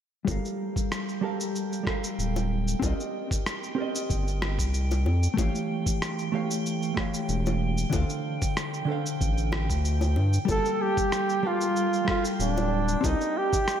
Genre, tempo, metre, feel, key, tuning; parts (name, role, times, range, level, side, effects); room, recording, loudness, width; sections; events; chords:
sunset chillout; 94 BPM; 4/4; straight; G minor; A4 = 440 Hz
hollow-body jazz guitar; accompaniment; 0.2-13.8 s; D3 to F5; -30 LUFS; equal; auto-pan, low-pass filter, tape echo
round analog bass; bass; 0.3-13.2 s; D1 to G2; -26 LUFS; equal; tube saturation
electronic kick drum; drums; 0.3-13.6 s; -30 LUFS; equal
electronic shaker and rim click; drums; 0.3-13.8 s; -34 LUFS; equal
bongos; percussion; 0.3-13.2 s; -38 LUFS; left 4 dB
drifting glass-harmonics texture; texture; 1.0-13.8 s; G5; -39 LUFS; right 5 dB; chorus, built-in reverb
warm flugelhorn; melody; 10.5-13.8 s; D4 to A4; -26 LUFS; right 1 dB; analog delay
moderate plate reverb, RT60 2.0 s; dreamy mix soaked in reverb; -24 LUFS; side -9 dB against mid
0.3-13.8 A section
0.3 Gm9; 2.8 Cm9; 5.4 A7b13; 7.9 Dm7; 10.5 Gm9; 13.0 Cm9